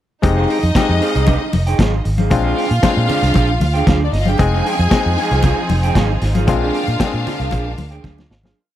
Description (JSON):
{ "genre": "disco", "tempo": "115 BPM", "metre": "4/4", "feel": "straight", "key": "F dorian", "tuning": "A4 = 441 Hz", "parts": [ { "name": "clear studio string section", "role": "second line", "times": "0.2-8.3 s", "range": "D4 to Ab5", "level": "-22 LUFS", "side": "equal", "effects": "none" }, { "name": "electric guitar through a small old amp", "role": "accompaniment", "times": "0.2-8.6 s", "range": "D4 to G5", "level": "-23 LUFS", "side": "right 5 dB", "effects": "spring reverb" }, { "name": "overdriven clav", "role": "accompaniment", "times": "0.2-7.7 s", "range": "G3 to Ab4", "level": "-21 LUFS", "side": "left 6 dB", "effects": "none" }, { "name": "vintage muted fingered electric bass", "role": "bass", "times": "0.2-8.5 s", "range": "F1 to Bb2", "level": "-18 LUFS", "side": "equal", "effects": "none" }, { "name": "vintage drum kit", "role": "drums", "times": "0.2-8.6 s", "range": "hi-hat, kick drum, snare drum", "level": "-19 LUFS", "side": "equal", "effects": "none" }, { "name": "congas", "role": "percussion", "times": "0.2-8.6 s", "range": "none", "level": "-22 LUFS", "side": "left 4 dB", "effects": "none" }, { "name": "bright studio string section", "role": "sustained chords", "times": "4.4-8.5 s", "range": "F3 to Ab4", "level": "-25 LUFS", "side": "right 1 dB", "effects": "none" } ], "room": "little or no reverb", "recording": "dry, close 1970s-style studio recording", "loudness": "-13 LUFS", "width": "side -12 dB against mid", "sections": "0.2-8.6 groove", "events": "fade-out 6.5-8.6; drum fill 8.0-8.6", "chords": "0.2 Fm7; 2.3 Bb9; 4.4 Fm7; 6.5 Bb9" }